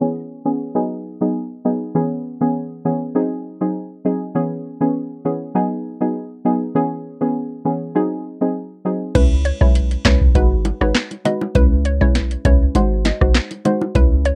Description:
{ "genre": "dancehall", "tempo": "100 BPM", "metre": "4/4", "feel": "straight", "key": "C# minor", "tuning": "A4 = 440 Hz", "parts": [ { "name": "deep mellow chord stab", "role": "accompaniment", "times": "0.0-14.4 s", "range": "E3 to B#4", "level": "-22 LUFS", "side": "equal", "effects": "chorus, low-pass filter" }, { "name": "bongos", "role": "percussion", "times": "9.1-14.1 s", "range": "none", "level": "-27 LUFS", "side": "equal", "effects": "none" }, { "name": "hollow square pluck", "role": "melody", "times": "9.2-14.4 s", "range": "B4 to D#5", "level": "-26 LUFS", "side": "equal", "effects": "chorus" }, { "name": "warm 808-style bass", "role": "bass", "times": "9.2-14.3 s", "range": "G#1 to C#2", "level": "-21 LUFS", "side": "equal", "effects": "none" }, { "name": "booming analog drum machine", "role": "drums", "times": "9.2-14.4 s", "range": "crash cymbal, handclaps, hi-hat, kick drum, rim click, snare drum", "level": "-17 LUFS", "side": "equal", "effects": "vintage 12-bit sampler grit" } ], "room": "light reverb", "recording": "dark, warm production", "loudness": "-19 LUFS", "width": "mono", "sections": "0.0-9.2 A section; 9.2-14.4 B section", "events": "filter sweep on synth stab 0.0-9.2", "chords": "0.0 C#m7; 0.8 G#m7; 2.0 C#m7; 3.2 G#7; 4.4 C#m7; 5.6 G#m7; 6.8 C#m7; 8.0 G#7; 9.2 C#m7; 10.4 G#m7; 11.6 C#m7; 12.8 G#7" }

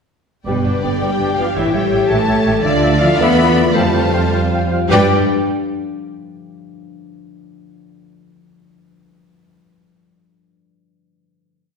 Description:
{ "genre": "cinematic, heroic adventure film score", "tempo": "102-112 BPM (dotted quarters)", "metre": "6/8", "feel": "straight", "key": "G mixolydian", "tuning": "A4 = 440 Hz", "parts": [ { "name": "warm symphonic violin section", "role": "melody", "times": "0.5-5.1 s", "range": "B4 to B5", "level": "-23 LUFS", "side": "left 3 dB", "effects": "none" }, { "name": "bright clarinet", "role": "second line", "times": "0.5-5.1 s", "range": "B4 to D5", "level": "-25 LUFS", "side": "left 1 dB", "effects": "none" }, { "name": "mellow cor anglais", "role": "second line", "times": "0.5-5.1 s", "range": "D5 to F5", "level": "-25 LUFS", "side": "right 1 dB", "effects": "none" }, { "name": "small flute group", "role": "second line", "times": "0.5-5.1 s", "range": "F5 to G5", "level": "-27 LUFS", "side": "left 2 dB", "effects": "none" }, { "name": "warm symphonic violin section", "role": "second line", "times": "0.5-5.1 s", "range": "B4 to G5", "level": "-26 LUFS", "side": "left 2 dB", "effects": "none" }, { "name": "rich symphonic viola section", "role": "accompaniment", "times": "0.5-5.1 s", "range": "E3 to G4", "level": "-22 LUFS", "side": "right 1 dB", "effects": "none" }, { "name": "dark French horn section", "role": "sustained chords", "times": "0.5-5.1 s", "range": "B3 to B4", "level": "-21 LUFS", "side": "left 2 dB", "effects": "none" }, { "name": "concert harp", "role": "arpeggios", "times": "0.5-6.1 s", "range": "G2 to F5", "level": "-23 LUFS", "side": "left 5 dB", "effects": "none" }, { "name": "rich symphonic cello section", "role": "bass", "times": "0.5-5.1 s", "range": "B2 to B3", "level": "-20 LUFS", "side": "right 2 dB", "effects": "none" }, { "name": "warm symphonic double bass section", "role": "bass", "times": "0.5-5.1 s", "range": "G1 to G2", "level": "-20 LUFS", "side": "right 3 dB", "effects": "none" } ], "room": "wet scoring stage reverb, RT60 1.5 s", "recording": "heard from further back in the room", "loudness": "-13 LUFS", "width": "side -6 dB against mid", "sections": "0.5-4.9 theme; 4.9-6.1 final chord", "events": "slowing down 2.1-4.9", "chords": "0.5 G; 1.6 A7; 2.6 Dmadd9; 3.8 Fadd9; 4.9 G" }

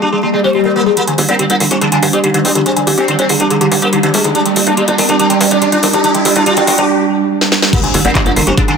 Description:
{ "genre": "psychedelic trance", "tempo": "142 BPM", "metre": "4/4", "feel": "straight", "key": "G phrygian", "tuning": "A4 = 439 Hz", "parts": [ { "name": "sitar", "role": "melody", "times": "0.0-8.7 s", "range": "D3 to D4", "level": "-15 LUFS", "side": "equal", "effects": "phaser, sidechain pumping, tape echo" }, { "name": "pulsing gated texture", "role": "sustained chords", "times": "0.0-8.8 s", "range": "G3 to D4", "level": "-16 LUFS", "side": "right 4 dB", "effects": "chorus, built-in reverb, vintage 12-bit sampler grit, sidechain pumping" }, { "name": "woody wave-folded pluck", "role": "riff", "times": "0.0-8.7 s", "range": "F4 to Ab5", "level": "-18 LUFS", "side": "left 1 dB", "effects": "chorus, auto-pan, sidechain pumping, ping-pong delay" }, { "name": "swell, riser and impact", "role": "sound effects", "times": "0.3-8.8 s", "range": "none", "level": "-19 LUFS", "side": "left 3 dB", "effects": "none" }, { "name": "drum and bass drum kit", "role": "drums", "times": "1.0-8.8 s", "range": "crash cymbal, handclaps, hi-hat, snare drum", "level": "-16 LUFS", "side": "left 1 dB", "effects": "high-pass filter on hats, high-pass filter on snare, high-pass filter on cymbals, high-pass filter on room" }, { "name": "tight sequencer bass", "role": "bass", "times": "1.2-8.5 s", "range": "G1 to G2", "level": "-20 LUFS", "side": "left 1 dB", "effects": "high-pass filter" }, { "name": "metallic wobble bass", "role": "second line", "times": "1.3-3.3, 8.0-8.7 s", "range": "C4 to D4", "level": "-23 LUFS", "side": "left 2 dB", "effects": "wide subtle chorus, sidechain pumping, high-pass filter, digital delay" }, { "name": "electronic kick drum", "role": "drums", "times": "7.7-8.7 s", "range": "none", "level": "-14 LUFS", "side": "left 1 dB", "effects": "none" } ], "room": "moderate lush hall reverb, RT60 2.1 s", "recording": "none", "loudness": "-10 LUFS", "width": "side -6 dB against mid", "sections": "1.0-7.7 A section; 7.7-8.8 B section", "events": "swell 0.3-1.0; build-up 1.0-7.7; riser 1.0-6.9; filter sweep on synth texture 1.0-7.7; drum fill 7.4-7.7; drop 7.7-8.8; impact 7.7-8.8", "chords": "0.0 G5" }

